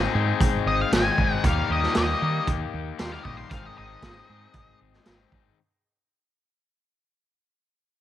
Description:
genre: classic rock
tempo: 116 BPM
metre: 4/4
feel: straight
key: Ab major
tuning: A4 = 440 Hz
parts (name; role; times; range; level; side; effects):
- crunchy overdriven guitar; riff; 0.0-5.6 s; Ab2 to Ab4; -28 LUFS; left 10 dB; none
- growling fingered electric bass; bass; 0.0-5.5 s; Ab1 to Eb3; -28 LUFS; right 1 dB; overdrive
- raw garage drum kit; drums; 0.4-5.4 s; hi-hat, kick drum, snare drum; -26 LUFS; right 2 dB; none
- octave-fuzz lead guitar; melody; 0.7-4.8 s; Eb5 to C6; -28 LUFS; left 1 dB; distortion, tape echo
room: light reverb, small room ambience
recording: 1960s-style stereo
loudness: -21 LUFS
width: side -12 dB against mid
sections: 0.0-5.6 A section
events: fade-out 0.0-5.6; lead electric guitar solo 0.0-5.6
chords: 0.0 Ab; 1.4 Eb; 3.5 Ab

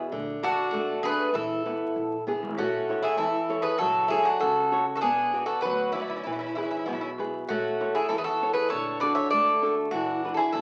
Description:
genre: greek folk, Greek bouzouki band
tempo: 98 BPM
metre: 2/4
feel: straight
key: A major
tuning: A4 = 440 Hz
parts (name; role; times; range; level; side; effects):
- flamenco guitar; accompaniment; 0.0-10.6 s; B2 to D5; -32 LUFS; equal; none
- upright bass; bass; 0.1-10.6 s; F#1 to E2; -48 LUFS; equal; none
- darbuka; percussion; 0.1-10.6 s; none; -49 LUFS; equal; none
- Greek bouzouki; melody; 0.4-10.6 s; E4 to E5; -29 LUFS; equal; none
- Greek bouzouki; second line; 0.4-10.6 s; B3 to C#5; -35 LUFS; equal; none
room: wet large studio reverb, RT60 0.9 s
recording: very old 78 rpm record, vinyl crackle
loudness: -27 LUFS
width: mono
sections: 0.0-2.6 A section; 2.6-10.6 B section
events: drum fill 1.8-2.6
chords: 0.1 D; 1.4 E; 2.6 A; 3.8 F#m; 5.0 Bm; 6.3 E; 7.5 A; 8.7 D; 9.9 E7

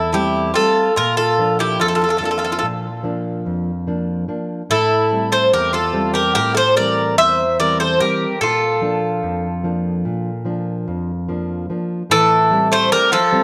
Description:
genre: greek folk, Greek bouzouki band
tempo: 146 BPM (eighths)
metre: 9/8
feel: straight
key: A phrygian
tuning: A4 = 440 Hz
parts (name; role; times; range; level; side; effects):
- Greek bouzouki; melody; 0.0-13.4 s; G4 to E5; -18 LUFS; equal; none
- Greek bouzouki; second line; 0.0-13.4 s; E3 to C5; -25 LUFS; equal; none
- nylon-string guitar; accompaniment; 0.0-13.4 s; E2 to D4; -25 LUFS; equal; none
room: moderate plate reverb, RT60 2.8 s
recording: none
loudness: -18 LUFS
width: mono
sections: 0.0-12.1 A section; 12.1-13.4 A section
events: none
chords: 0.0 Am7; 1.0 Bb; 4.7 Am7; 8.4 Bb; 12.1 Am7

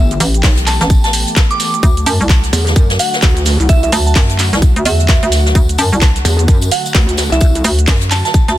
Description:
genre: bass house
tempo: 129 BPM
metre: 4/4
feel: swing 60% on 16ths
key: unclear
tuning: A4 = 441 Hz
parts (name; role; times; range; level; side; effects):
- dark chamber string section; sustained chords; 0.0-8.6 s; D3 to G4; -24 LUFS; left 1 dB; sidechain pumping, low-pass filter
- pulsing pluck wobble bass; bass; 0.0-7.6 s; G1 to F#2; -14 LUFS; equal; chorus, tube saturation, sidechain pumping
- garage drum kit; drums; 0.1-8.6 s; handclaps, hi-hat, shaker; -18 LUFS; right 1 dB; none
- hollow knocking FM bass; bass; 0.2-8.6 s; A1 to F#2; -14 LUFS; equal; tube saturation, sidechain pumping
- jazz brush drum kit; drums; 0.2-8.6 s; hi-hat, snare drum, tambourine; -23 LUFS; left 2 dB; sidechain pumping on hats, high-pass filter on hats, soft clipping on snare, high-pass filter on snare, sidechain pumping on perc, high-pass filter on perc, high-pass filter on room
- electronic kick drum; drums; 0.4-8.5 s; none; -11 LUFS; equal; none
- soft synth bell; melody; 0.7-8.6 s; E5 to D6; -20 LUFS; right 3 dB; chorus, dub echo
room: studio reverb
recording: dense, heavily limited modern master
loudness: -10 LUFS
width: side -14 dB against mid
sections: 0.0-8.6 A section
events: none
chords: 0.0 Asus2; 1.8 D

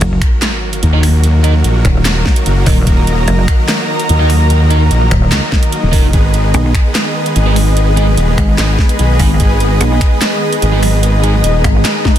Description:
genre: heavy wobble dubstep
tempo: 147 BPM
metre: 4/4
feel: half-time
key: Eb minor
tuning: A4 = 437 Hz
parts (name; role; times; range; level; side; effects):
- supersaw chords; sustained chords; 0.0-12.2 s; Eb3 to Cb5; -19 LUFS; right 1 dB; sidechain pumping
- pulsing pluck wobble bass; bass; 0.0-11.8 s; Eb1 to Cb2; -12 LUFS; equal; chorus, overdrive
- dubstep drum kit; drums; 0.0-12.2 s; finger snaps, handclaps, hi-hat, snare drum, toms; -18 LUFS; equal; studio reverb
- sub drop and swell; sound effects; 0.0-1.2, 12.0-12.2 s; none; -22 LUFS; equal; none
- electronic kick drum; drums; 0.2-12.1 s; none; -12 LUFS; equal; studio reverb
- granular cloud pad; texture; 0.5-12.2 s; Ab4 to Cb6; -20 LUFS; equal; built-in reverb, sidechain pumping
- wobble bass; bass; 0.8-11.6 s; Eb1 to Eb2; -11 LUFS; equal; chorus, overdrive
- thick fuzz guitar; stabs; 0.9-11.3 s; Ab3 to Eb5; -22 LUFS; right 3 dB; distortion, ping-pong delay
room: little or no reverb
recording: dense, heavily limited modern master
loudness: -9 LUFS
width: side -11 dB against mid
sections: 0.0-12.2 A section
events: impact 0.0-1.2; swell 12.0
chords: 0.0 Ebm; 6.1 Abm

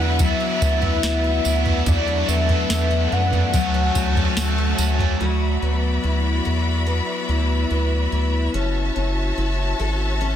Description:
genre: dream pop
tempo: 72 BPM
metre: 4/4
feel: straight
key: D major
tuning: A4 = 436 Hz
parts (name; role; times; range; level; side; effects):
- warm velvety synth lead; melody; 0.0-4.8 s; D5 to F#5; -27 LUFS; left 3 dB; chorus, digital delay
- overdriven electric guitar; accompaniment; 0.0-5.7 s; D3 to F#4; -28 LUFS; right 6 dB; harmonic tremolo, wide subtle chorus
- bright studio string section; sustained chords; 0.0-10.4 s; E4 to B5; -27 LUFS; left 1 dB; none
- picked twelve-string acoustic guitar; arpeggios; 0.0-10.4 s; F#3 to A4; -26 LUFS; left 4 dB; lush chorus, digital delay
- round analog bass; bass; 0.0-10.3 s; F#1 to F#2; -21 LUFS; equal; none
- soft vintage rhythm box; drums; 0.2-5.2 s; kick drum, snare drum, tambourine, toms; -22 LUFS; right 1 dB; none
room: little or no reverb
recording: dense, heavily limited modern master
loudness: -18 LUFS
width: side -10 dB against mid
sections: 0.0-5.2 A section; 5.2-10.4 B section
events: none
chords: 0.0 D69; 1.9 E9sus4; 3.5 Dmaj7; 8.5 F#m7

